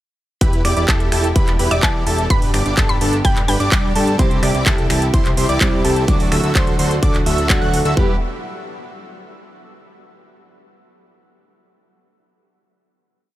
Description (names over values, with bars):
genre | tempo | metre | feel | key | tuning
EDM, festival progressive house | 127 BPM | 4/4 | straight | E minor | A4 = 439 Hz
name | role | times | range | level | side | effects
lush unison pad | sustained chords | 0.4-8.2 s | A2 to G4 | -28 LUFS | equal | chorus, sidechain pumping
plucky unison lead | arpeggios | 0.4-8.1 s | A5 to F#6 | -26 LUFS | equal | sidechain pumping, dub echo
dense compressed supersaw | riff | 0.4-8.1 s | D4 to F#5 | -23 LUFS | right 1 dB | sidechain pumping, dub echo
fat analog bass | bass | 0.4-8.2 s | E1 to G2 | -21 LUFS | equal | sidechain pumping
electronic kick drum | drums | 0.4-8.1 s | none | -17 LUFS | equal | none
house drum kit | drums | 0.4-7.9 s | finger snaps, handclaps, hi-hat | -22 LUFS | right 1 dB | none
mallet-like synth pluck | melody | 1.7-4.0 s | E5 to B5 | -25 LUFS | left 1 dB | chorus, dub echo
fingerpicked steel-string acoustic guitar | accompaniment | 4.2-8.2 s | F#3 to G4 | -23 LUFS | right 2 dB | sidechain pumping, dub echo
room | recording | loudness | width
little or no reverb | none | -14 LUFS | side -14 dB against mid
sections
0.4-8.0 drop; 8.0-9.9 final chord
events
drop 0.4-8.0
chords
0.4 Em; 2.3 G; 4.2 C; 6.1 D; 8.0 Em